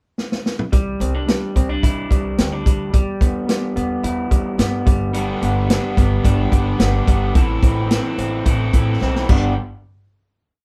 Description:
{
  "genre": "jangly indie pop",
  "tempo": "108 BPM",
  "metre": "4/4",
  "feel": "straight",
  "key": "unclear",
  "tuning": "A4 = 440 Hz",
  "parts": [
    { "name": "vintage drum kit", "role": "drums", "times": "0.2-9.4 s", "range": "crash cymbal, hi-hat, kick drum, snare drum, toms", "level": "-19 LUFS", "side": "equal", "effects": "none" },
    { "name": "electric guitar through a small old amp", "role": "arpeggios", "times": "0.7-9.5 s", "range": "E3 to E4", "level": "-25 LUFS", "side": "equal", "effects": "none" },
    { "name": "upright bass", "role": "bass", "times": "0.7-9.6 s", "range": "G1 to G2", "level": "-24 LUFS", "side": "equal", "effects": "none" },
    { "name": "raw garage guitar", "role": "accompaniment", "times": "5.1-9.5 s", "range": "G2 to A4", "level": "-28 LUFS", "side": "equal", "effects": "overdrive" }
  ],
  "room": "moderate small room reverb, RT60 0.5 s",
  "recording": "band playing live in one room",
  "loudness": "-18 LUFS",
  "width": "mono",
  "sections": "0.0-0.7 pickup bar; 0.7-9.6 pre-chorus; 9.6-10.6 final hit",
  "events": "drum fill 0.2-0.7, 9.0-9.6",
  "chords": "0.0 N.C.; 0.7 Cadd9; 2.9 Em; 4.9 G; 7.4 Am; 9.3 G; 9.6 N.C."
}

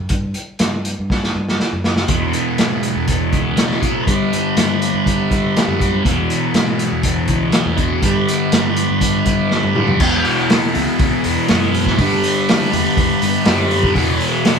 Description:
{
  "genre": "psychedelic rock",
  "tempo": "121 BPM",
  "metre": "4/4",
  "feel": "straight",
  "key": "unclear",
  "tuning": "A4 = 441 Hz",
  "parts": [
    { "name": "fingered electric bass", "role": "bass", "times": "0.0-14.2 s", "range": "C#2 to E3", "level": "-23 LUFS", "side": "equal", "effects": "none" },
    { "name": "vintage drum kit", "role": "drums", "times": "0.1-14.6 s", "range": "crash cymbal, hi-hat, kick drum, snare drum, toms", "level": "-18 LUFS", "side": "equal", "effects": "none" },
    { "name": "combo organ", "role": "sustained chords", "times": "2.1-14.6 s", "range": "F#3 to B4", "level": "-24 LUFS", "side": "right 6 dB", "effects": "none" },
    { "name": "thick fuzz guitar", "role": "riff", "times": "2.1-14.6 s", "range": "E2 to G3", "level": "-17 LUFS", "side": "left 1 dB", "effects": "distortion, phaser" }
  ],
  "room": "light reverb",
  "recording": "band playing live in one room",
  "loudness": "-14 LUFS",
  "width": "side -6 dB against mid",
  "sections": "0.0-10.0 A section; 10.0-14.6 B section",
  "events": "drum fill 1.1-2.1, 9.5-10.0",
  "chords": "0.1 N.C.; 2.1 Eadd9; 4.1 G; 6.0 Eadd9; 8.0 G; 10.0 Eadd9; 12.0 G; 14.0 Eadd9"
}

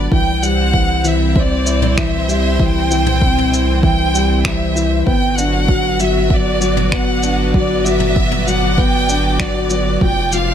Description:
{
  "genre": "piano and strings electronica",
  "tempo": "97 BPM",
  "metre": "4/4",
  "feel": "straight",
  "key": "G major",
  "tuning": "A4 = 440 Hz",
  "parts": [
    { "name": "rich chamber violin section", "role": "melody", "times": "0.0-10.5 s", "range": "D5 to G5", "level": "-19 LUFS", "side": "right 1 dB", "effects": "none" },
    { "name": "lush unison pad", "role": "sustained chords", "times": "0.0-10.5 s", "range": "E3 to D5", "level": "-23 LUFS", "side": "right 1 dB", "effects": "chorus, sidechain pumping" },
    { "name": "felt-muted upright piano", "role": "riff", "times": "0.0-10.5 s", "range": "E3 to E4", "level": "-19 LUFS", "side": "left 3 dB", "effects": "none" },
    { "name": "round analog bass", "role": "bass", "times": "0.0-10.5 s", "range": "F1 to C2", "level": "-19 LUFS", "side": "right 1 dB", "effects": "sidechain pumping" },
    { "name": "electronic kick drum", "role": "drums", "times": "0.1-10.1 s", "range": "none", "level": "-17 LUFS", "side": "right 1 dB", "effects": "none" },
    { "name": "jazz brush drum kit", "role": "drums", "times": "0.4-10.4 s", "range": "finger snaps, shaker, toms", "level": "-23 LUFS", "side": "left 1 dB", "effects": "none" }
  ],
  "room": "light reverb, small room ambience",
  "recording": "none",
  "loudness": "-13 LUFS",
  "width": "side -9 dB against mid",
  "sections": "0.0-10.5 A section",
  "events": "none",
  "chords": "0.1 C; 5.1 Gmaj7; 10.0 F6"
}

